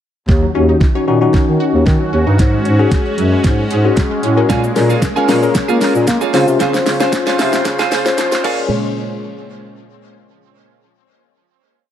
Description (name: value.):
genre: dance-pop.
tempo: 114 BPM.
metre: 4/4.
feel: straight.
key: unclear.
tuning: A4 = 444 Hz.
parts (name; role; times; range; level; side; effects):
sweeping resonant pad; sustained chords; 0.3-8.7 s; Bb2 to C5; -21 LUFS; right 1 dB; chorus, sidechain pumping.
wide unison pluck; arpeggios; 0.3-8.7 s; Eb3 to Db5; -24 LUFS; right 2 dB; phaser, sidechain pumping, ping-pong delay.
mellow bass clarinet; bass; 0.3-8.7 s; Eb2 to Bb3; -16 LUFS; equal; sidechain pumping.
smooth R&B drum kit; drums; 0.3-8.6 s; crash cymbal, hi-hat, kick drum, shaker, snare drum; -17 LUFS; equal; none.
bell-like tine electric piano; accompaniment; 0.5-8.7 s; Db4 to C5; -17 LUFS; left 6 dB; sidechain pumping.
twelve-string electric guitar; riff; 4.5-8.6 s; C4 to Ab4; -20 LUFS; right 7 dB; lush chorus.
room: light reverb.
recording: dark, warm production, high-pass filter.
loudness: -12 LUFS.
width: side -10 dB against mid.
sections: 0.3-8.7 build; 8.7-10.8 final hit.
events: build-up 0.3-8.7; drum fill 0.3-8.7; filter sweep 0.3-8.7.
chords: 0.3 Ebm7; 2.4 Ab7sus4; 4.5 Bbm7; 6.3 Dbmaj7; 8.4 Bbm7; 8.7 N.C..